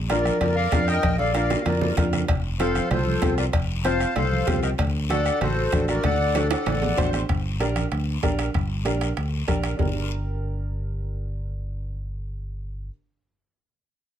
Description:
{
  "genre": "latin, cumbia",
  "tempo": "192 BPM",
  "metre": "4/4",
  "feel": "straight",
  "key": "G minor",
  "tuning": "A4 = 438 Hz",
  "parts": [
    { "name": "fingered electric bass", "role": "bass", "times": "0.0-12.9 s", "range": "F1 to F2", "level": "-26 LUFS", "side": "equal", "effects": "none" },
    { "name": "accordion", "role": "melody", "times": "0.1-7.1 s", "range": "A4 to A5", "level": "-26 LUFS", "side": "left 1 dB", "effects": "light tremolo tuning" },
    { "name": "bright clarinet", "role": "second line", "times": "0.1-7.1 s", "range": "F4 to C5", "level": "-31 LUFS", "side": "left 4 dB", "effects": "none" },
    { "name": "warm upright piano", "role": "accompaniment", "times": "0.1-12.9 s", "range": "C4 to C5", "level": "-28 LUFS", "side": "right 1 dB", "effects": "none" },
    { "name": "bombo", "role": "percussion", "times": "0.1-9.9 s", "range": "none", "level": "-28 LUFS", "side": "left 1 dB", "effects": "none" },
    { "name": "congas", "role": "percussion", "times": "0.1-9.9 s", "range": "none", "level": "-32 LUFS", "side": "right 3 dB", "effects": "none" },
    { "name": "cowbell and timbales", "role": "percussion", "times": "0.1-9.9 s", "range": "none", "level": "-32 LUFS", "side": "right 4 dB", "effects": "none" },
    { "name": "guiro", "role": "percussion", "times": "0.1-9.9 s", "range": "none", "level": "-37 LUFS", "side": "left 7 dB", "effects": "none" }
  ],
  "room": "light reverb",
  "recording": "close, detailed microphones",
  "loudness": "-21 LUFS",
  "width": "side -10 dB against mid",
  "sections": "0.0-7.3 A section; 7.3-9.8 B section; 9.8-12.3 C section",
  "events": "drum fill 1.0-2.3, 6.3-7.3",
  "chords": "0.0 Bb; 2.3 F; 4.8 D; 7.3 Gm"
}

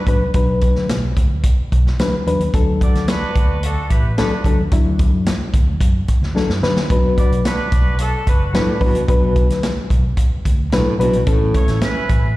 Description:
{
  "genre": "uptempo 1960s-style soul",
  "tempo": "110 BPM",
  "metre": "4/4",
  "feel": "straight",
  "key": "B minor",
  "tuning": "A4 = 439 Hz",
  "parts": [
    { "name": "mellow horn section", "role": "second line", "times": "0.0-12.3 s", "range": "C#4 to D5", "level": "-25 LUFS", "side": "right 2 dB", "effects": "slapback echo" },
    { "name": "reed electric piano", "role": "accompaniment", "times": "0.1-11.9 s", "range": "E3 to B4", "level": "-20 LUFS", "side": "left 3 dB", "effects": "overdrive, slapback echo" },
    { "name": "fingered electric bass", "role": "bass", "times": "0.1-12.4 s", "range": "F#1 to D3", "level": "-20 LUFS", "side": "equal", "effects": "none" },
    { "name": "vintage drum kit", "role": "drums", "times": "0.1-12.2 s", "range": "hi-hat, kick drum, snare drum", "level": "-17 LUFS", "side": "equal", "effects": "none" },
    { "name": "breathy baritone saxophone", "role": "riff", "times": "6.9-11.7 s", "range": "A2 to B2", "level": "-24 LUFS", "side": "right 2 dB", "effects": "slapback echo" }
  ],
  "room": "small room ambience",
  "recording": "live gig heard through the venue's PA, recital hall reverb",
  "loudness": "-14 LUFS",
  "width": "side -18 dB against mid",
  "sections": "0.0-12.4 A section",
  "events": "drum fill 6.4-6.9",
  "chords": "0.0 Bm; 2.5 D; 6.9 Bm; 11.3 A"
}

